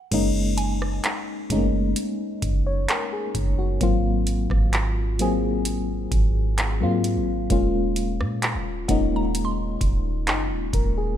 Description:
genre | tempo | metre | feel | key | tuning
contemporary R&B | 65 BPM | 4/4 | straight | unclear | A4 = 440 Hz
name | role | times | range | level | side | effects
mallet-like synth pluck | texture | 0.0-1.9, 8.9-10.8 s | Gb5 to C6 | -35 LUFS | right 3 dB | chorus, phaser, digital delay
mellow FM electric piano | accompaniment | 0.1-11.2 s | Gb3 to Db5 | -25 LUFS | left 3 dB | chorus, tremolo
soft 808-style bass | bass | 0.1-11.2 s | Eb1 to Bb2 | -25 LUFS | right 1 dB | none
booming analog drum machine | drums | 0.1-10.9 s | crash cymbal, handclaps, hi-hat, kick drum, rim click | -24 LUFS | right 1 dB | none
room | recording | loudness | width
little or no reverb | none | -21 LUFS | side -10 dB against mid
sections
0.1-11.2 A section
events
none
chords
0.1 Gb69; 3.8 Ab13; 7.5 Eb7sus4

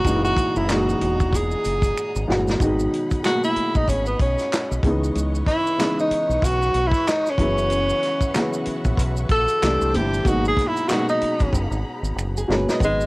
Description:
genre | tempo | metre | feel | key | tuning
R&B, neo-soul | 94 BPM | 4/4 | swing 58% on 16ths | G# minor | A4 = 439 Hz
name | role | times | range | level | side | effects
clear tenor saxophone | melody | 0.0-13.1 s | G#3 to A4 | -22 LUFS | equal | cassette tape
warm upright piano | accompaniment | 0.0-13.1 s | A2 to F#4 | -25 LUFS | equal | cassette tape
warm studio string section | sustained chords | 0.0-12.8 s | G#4 to D6 | -35 LUFS | left 1 dB | cassette tape
warm soul drum kit | drums | 0.0-13.0 s | handclaps, hi-hat, kick drum, snare drum | -24 LUFS | equal | none
deep dub fingered electric bass | bass | 0.1-13.1 s | E1 to C#2 | -24 LUFS | equal | transformer saturation
maracas and finger snaps | percussion | 0.1-13.1 s | none | -35 LUFS | right 3 dB | none
flamenco guitar | second line | 12.4-13.0 s | G#4 to D#5 | -28 LUFS | right 1 dB | cassette tape
room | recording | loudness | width
light reverb | home recording on cassette | -18 LUFS | side -24 dB against mid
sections
0.0-2.6 A section; 2.6-12.8 B section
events
drum fill 2.0-2.6, 11.5-12.8; tenor saxophone solo 2.6-12.8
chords
0.0 F#13; 2.6 G#m7; 4.8 C#m9; 7.4 F#7sus4; 9.6 C69; 10.3 G#m9

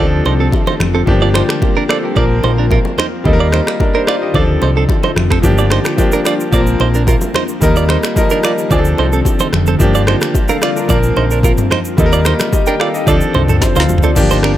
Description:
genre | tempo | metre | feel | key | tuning
afrobeats | 110 BPM | 4/4 | straight | G minor | A4 = 440 Hz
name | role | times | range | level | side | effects
clear grand piano | accompaniment | 0.0-14.6 s | F3 to G5 | -17 LUFS | left 1 dB | none
ethereal airy pad | sustained chords | 0.0-14.6 s | D3 to Bb4 | -22 LUFS | left 2 dB | ensemble chorus, built-in reverb
direct-recorded clean electric guitar | riff | 0.0-14.5 s | C4 to D5 | -19 LUFS | right 6 dB | digital delay
fingered electric bass | bass | 0.0-14.6 s | F1 to Eb2 | -15 LUFS | equal | none
bongos and congas | percussion | 0.3-14.3 s | none | -24 LUFS | left 4 dB | none
afro-pop drum kit | drums | 0.5-14.6 s | crash cymbal, finger snaps, kick drum, rim click, shaker, snare drum, toms | -16 LUFS | equal | overdrive
room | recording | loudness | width
little or no reverb | none | -11 LUFS | side -13 dB against mid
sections
0.0-14.2 A section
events
break 0.0-5.4; drum fill 13.6-14.2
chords
0.0 Dm7; 1.1 Gm7; 2.2 Bbsus2; 3.3 Eb; 4.3 Dm7; 5.4 Gm7; 6.5 Bbsus2; 7.6 Eb; 8.7 Dm7; 9.8 Gm7; 10.9 Bbsus2; 12.0 Eb; 13.1 Dm7

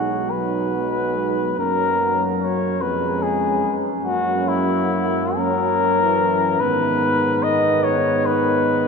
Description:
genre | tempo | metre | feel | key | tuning
classical, hymn-like piece for brass band | 48 BPM (dotted quarters) | 6/8 | rubato | unclear | A4 = 439 Hz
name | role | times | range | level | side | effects
warm flugelhorn | melody | 0.0-8.9 s | E4 to D#5 | -20 LUFS | left 3 dB | none
mellow French horn section | second line | 0.0-8.9 s | B3 to D#4 | -28 LUFS | right 6 dB | none
dark trombone | accompaniment | 0.0-8.9 s | F#3 to C#4 | -27 LUFS | right 5 dB | none
mellow trombone section | accompaniment | 0.0-8.9 s | D#3 to G#3 | -28 LUFS | left 1 dB | none
warm tuba | bass | 0.0-8.9 s | B1 to G#2 | -26 LUFS | equal | none
room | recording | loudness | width
wet cathedral reverb, RT60 7.4 s | none | -17 LUFS | side -5 dB against mid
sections
0.0-8.9 A section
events
none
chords
0.0 B; 1.6 F#; 2.8 C#/E#; 4.0 F#; 6.6 G#m

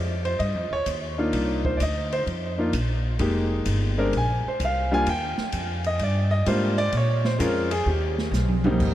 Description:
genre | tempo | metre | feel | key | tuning
jazz piano trio | 128 BPM | 4/4 | swing 68% on 8ths | Eb major | A4 = 439 Hz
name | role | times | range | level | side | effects
upright bass | bass | 0.0-8.9 s | F1 to Bb2 | -25 LUFS | equal | none
warm grand piano | melody | 0.3-8.9 s | Ab2 to Ab5 | -25 LUFS | equal | diffuse ambient delay
open jazz drum kit | drums | 0.3-8.9 s | crash cymbal, hi-hat, kick drum, ride cymbal, snare drum, toms | -32 LUFS | equal | none
room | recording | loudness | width
light reverb, small room ambience | none | -22 LUFS | side -13 dB against mid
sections
0.0-8.8 A section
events
grand piano solo 0.0-8.9; drum fill 8.3-8.8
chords
0.4 G7(no3); 1.3 Cm11; 3.2 Fm11; 4.1 Bbsus2; 5.1 Ebmaj7; 6.9 Bbm7; 7.9 Eb

